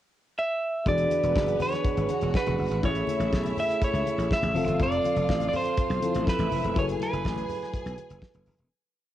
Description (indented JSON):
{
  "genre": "disco",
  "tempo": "122 BPM",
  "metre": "4/4",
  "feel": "straight",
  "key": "unclear",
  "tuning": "A4 = 441 Hz",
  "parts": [
    { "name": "electric guitar at the edge of break-up", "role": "melody", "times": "0.4-7.7 s", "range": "B4 to E5", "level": "-28 LUFS", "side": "right 1 dB", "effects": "none" },
    { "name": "clear studio string section", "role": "second line", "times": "0.9-8.7 s", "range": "B3 to G#5", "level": "-36 LUFS", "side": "left 2 dB", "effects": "none" },
    { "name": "reed electric piano", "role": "accompaniment", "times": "0.9-8.7 s", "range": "E3 to C#5", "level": "-32 LUFS", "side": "left 6 dB", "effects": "overdrive" },
    { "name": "mellow French horn section", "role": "sustained chords", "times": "0.9-8.7 s", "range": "E3 to B4", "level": "-33 LUFS", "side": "right 8 dB", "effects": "stereo widening" },
    { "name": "slap bass", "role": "bass", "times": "0.9-8.7 s", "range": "E1 to C#2", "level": "-30 LUFS", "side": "equal", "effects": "none" },
    { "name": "damped 70s drum kit", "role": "drums", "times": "0.9-8.7 s", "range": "hi-hat, kick drum, snare drum", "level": "-30 LUFS", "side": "equal", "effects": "none" },
    { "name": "congas", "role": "percussion", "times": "0.9-8.6 s", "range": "none", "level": "-39 LUFS", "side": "left 6 dB", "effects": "none" }
  ],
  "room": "light reverb, small room ambience",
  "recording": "home recording on cassette",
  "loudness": "-24 LUFS",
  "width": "side -12 dB against mid",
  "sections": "0.0-0.9 pickup bar; 0.9-8.7 pre-chorus",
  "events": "fade-out 6.8-8.7",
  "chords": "0.0 N.C.; 0.9 E9; 2.8 Amaj7; 4.6 Fmaj7; 6.8 F#m11"
}